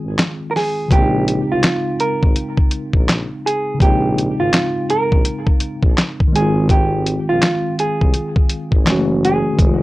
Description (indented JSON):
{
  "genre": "lo-fi hip hop",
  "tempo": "83 BPM",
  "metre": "4/4",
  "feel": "swing 61% on 16ths",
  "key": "Bb dorian",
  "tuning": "A4 = 440 Hz",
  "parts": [
    { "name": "hollow-body jazz guitar", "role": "melody", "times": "0.0-9.8 s", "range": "F4 to Bb4", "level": "-20 LUFS", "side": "right 2 dB", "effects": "low-pass filter, tape echo" },
    { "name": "tine electric piano", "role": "accompaniment", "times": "0.0-9.8 s", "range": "Db3 to Gb4", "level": "-21 LUFS", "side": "left 1 dB", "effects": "medium stereo tremolo, low-pass filter" },
    { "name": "breathy tuba", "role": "bass", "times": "0.1-9.8 s", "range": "F1 to C2", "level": "-22 LUFS", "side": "equal", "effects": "transformer saturation" },
    { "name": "lo-fi sampler-style drum kit", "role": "drums", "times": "0.2-9.8 s", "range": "handclaps, hi-hat, kick drum, snare drum", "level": "-15 LUFS", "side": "equal", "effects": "vintage 12-bit sampler grit" }
  ],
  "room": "light reverb",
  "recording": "dry, gritty hardware recording",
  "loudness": "-14 LUFS",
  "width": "side -18 dB against mid",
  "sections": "0.0-9.8 A section",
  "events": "break 0.0-0.9",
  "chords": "0.0 Fm7; 0.9 Bbm11; 6.3 Ab6; 8.9 Gbm7"
}